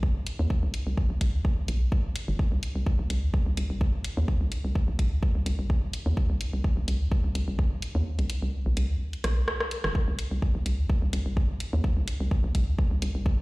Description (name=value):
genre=minimal techno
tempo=127 BPM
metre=4/4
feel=swing 54% on 16ths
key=C minor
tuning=A4 = 440 Hz
part: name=electronic kick drum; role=drums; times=0.0-13.4 s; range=none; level=-25 LUFS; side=equal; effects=none
part: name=house drum kit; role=drums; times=0.3-13.1 s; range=hi-hat, rim click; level=-34 LUFS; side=equal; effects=none
part: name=hollow knocking FM bass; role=bass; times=0.4-13.2 s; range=G1 to Eb2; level=-26 LUFS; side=equal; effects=tube saturation, sidechain pumping
room=little or no reverb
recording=played on a big sound system in a bare room, stone room reverb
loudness=-25 LUFS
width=side -23 dB against mid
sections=0.0-13.4 A section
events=kick drops out 8.1-10.0; drum fill 9.2-10.0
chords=none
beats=0.03 | 0.50 0.97 1.45 1.92 | 2.39 2.87 3.34 3.81 | 4.28 4.75 5.23 5.70 | 6.17 6.64 7.12 7.59 | 8.06 8.53 9.01 9.48 | 9.95 10.42 10.90 11.37 | 11.84 12.31 12.79 13.26